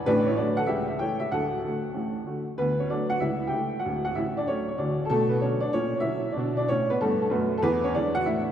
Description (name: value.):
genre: jazz, stride piano.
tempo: 190 BPM.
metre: 4/4.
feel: swing 66% on 8ths.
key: D major.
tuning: A4 = 440 Hz.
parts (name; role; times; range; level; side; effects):
warm upright piano; solo; 0.0-8.5 s; D1 to G5; -24 LUFS; equal; none.
room: wet church reverb, RT60 3.2 s.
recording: recorded in a church or concert hall.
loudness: -24 LUFS.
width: side -9 dB against mid.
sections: 0.0-2.6 A section; 2.6-8.5 A section.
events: none.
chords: 0.1 D/A; 0.7 A7/C#; 1.3 D; 3.2 A/C#; 3.8 D; 5.1 Bm; 5.7 F#/A#; 6.4 Bm; 7.6 E7.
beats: | 0.05 0.37 0.69 1.00 | 1.31 1.63 1.95 2.26 | 2.58 2.89 3.21 3.52 | 3.84 4.16 4.47 4.79 | 5.10 5.42 5.74 6.05 | 6.37 6.68 7.00 7.32 | 7.63 7.95 8.26.